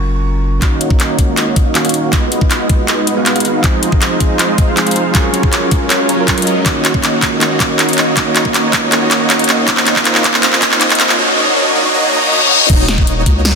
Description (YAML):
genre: future bass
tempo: 159 BPM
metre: 4/4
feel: half-time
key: Eb minor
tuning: A4 = 440 Hz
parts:
  - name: clear baby grand piano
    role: melody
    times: 0.0-0.5 s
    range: Db6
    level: -33 LUFS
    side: right 2 dB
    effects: sidechain pumping, dub echo
  - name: bell-like tine electric piano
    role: accompaniment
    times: 0.0-11.2 s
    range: Eb3 to Bb4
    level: -20 LUFS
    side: right 3 dB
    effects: fast stereo tremolo, vintage 12-bit sampler grit, sidechain pumping, dub echo
  - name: saturated sub bass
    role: bass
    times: 0.0-13.6 s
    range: Eb1 to Db2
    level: -23 LUFS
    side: equal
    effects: none
  - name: supersaw chords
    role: riff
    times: 0.6-13.6 s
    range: Gb3 to F5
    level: -15 LUFS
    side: equal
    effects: sidechain pumping, low-pass filter, dub echo
  - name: big-room dance drum kit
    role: drums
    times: 0.6-13.5 s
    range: crash cymbal, handclaps, hi-hat, snare drum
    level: -14 LUFS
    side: equal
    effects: soft clipping on snare, studio reverb
  - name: electronic kick drum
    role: drums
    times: 0.6-13.3 s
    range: none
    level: -14 LUFS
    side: equal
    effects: studio reverb
  - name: riser and reverse cymbal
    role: sound effects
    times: 6.5-12.7 s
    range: none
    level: -19 LUFS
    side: left 2 dB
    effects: none
room: moderate huge ambient reverb, RT60 5.2 s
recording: dense, heavily limited modern master, high-pass filter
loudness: -10 LUFS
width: side -5 dB against mid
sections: 0.6-12.7 A section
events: build-up 0.6-12.7; drum fill 0.6-11.2; filter sweep on supersaw synth 0.6-12.7; filter sweep 0.6-12.7; reverse cymbal 11.9-12.7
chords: 0.0 Gbmaj7; 0.6 Ebm7; 2.1 Abm7/Eb; 3.6 Fm7; 5.1 Gbmaj7; 6.7 Ebm7; 8.2 N.C.; 9.7 F5; 11.2 Gb; 12.7 Ebm7